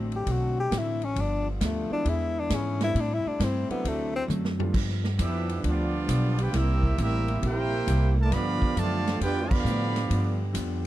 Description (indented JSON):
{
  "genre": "jazz, big band swing",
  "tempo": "134 BPM",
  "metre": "4/4",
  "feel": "swing 67% on 8ths",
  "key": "unclear",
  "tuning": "A4 = 442 Hz",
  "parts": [
    { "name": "vintage hollow-body jazz guitar", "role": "accompaniment", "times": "0.0-10.9 s", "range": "G2 to G#4", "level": "-36 LUFS", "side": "left 4 dB", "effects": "none" },
    { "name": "warm trombone section", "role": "sustained chords", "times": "0.0-10.9 s", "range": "C3 to G4", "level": "-39 LUFS", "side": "right 2 dB", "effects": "none" },
    { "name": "upright bass", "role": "bass", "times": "0.0-10.9 s", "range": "G1 to A2", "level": "-27 LUFS", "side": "equal", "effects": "none" },
    { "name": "swinging big-band drum kit", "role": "drums", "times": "0.1-10.7 s", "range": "crash cymbal, hi-hat, kick drum, ride cymbal, snare drum, toms", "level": "-32 LUFS", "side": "equal", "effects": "none" },
    { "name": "breathy tenor saxophone", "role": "melody", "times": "0.2-4.2 s", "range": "F3 to G4", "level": "-29 LUFS", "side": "left 3 dB", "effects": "none" },
    { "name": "warm concert grand piano", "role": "accompaniment", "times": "1.9-4.7 s", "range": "E3 to F4", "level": "-35 LUFS", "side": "right 4 dB", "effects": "none" },
    { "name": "bright trumpet section", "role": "melody", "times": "5.2-10.4 s", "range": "B3 to B5", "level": "-32 LUFS", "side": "right 2 dB", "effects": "none" },
    { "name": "warm trombone section", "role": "second line", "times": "5.2-10.4 s", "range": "D3 to G4", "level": "-30 LUFS", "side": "right 3 dB", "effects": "none" }
  ],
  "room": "little or no reverb",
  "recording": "dry, close 1970s-style studio recording",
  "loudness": "-24 LUFS",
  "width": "side -14 dB against mid",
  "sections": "0.0-4.7 A section; 4.7-10.9 B section",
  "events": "tenor saxophone solo 0.0-4.7; drum fill 4.3-4.7; band accent 9.4",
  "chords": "0.0 D7; 1.2 G7; 2.1 E7; 3.0 Am7; 3.8 D7; 4.7 G7; 6.5 C7; 8.3 G7"
}